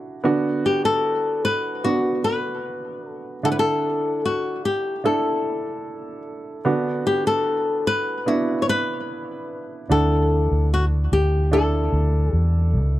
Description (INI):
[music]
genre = pop ballad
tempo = 74 BPM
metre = 4/4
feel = straight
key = D major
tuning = A4 = 440 Hz
[part]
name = warm baby grand piano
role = accompaniment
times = 0.0-13.0 s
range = D3 to F#5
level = -25 LUFS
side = right 3 dB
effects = none
[part]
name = flamenco guitar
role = melody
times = 0.7-12.7 s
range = F#4 to C#5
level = -22 LUFS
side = left 2 dB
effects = none
[part]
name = vintage muted fingered electric bass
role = bass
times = 9.9-13.0 s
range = C#2 to E2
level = -19 LUFS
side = equal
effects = none
[sound]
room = little or no reverb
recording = dry, close 1970s-style studio recording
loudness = -19 LUFS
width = side -15 dB against mid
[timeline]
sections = 0.0-13.0 A section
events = none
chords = 0.2 Bm/D; 3.4 Dadd9; 6.7 Bm/D; 9.9 Dadd9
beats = | 0.24 1.04 1.84 2.64 | 3.44 4.24 5.04 5.85 | 6.65 7.46 8.26 9.08 | 9.90 10.71 11.52 12.33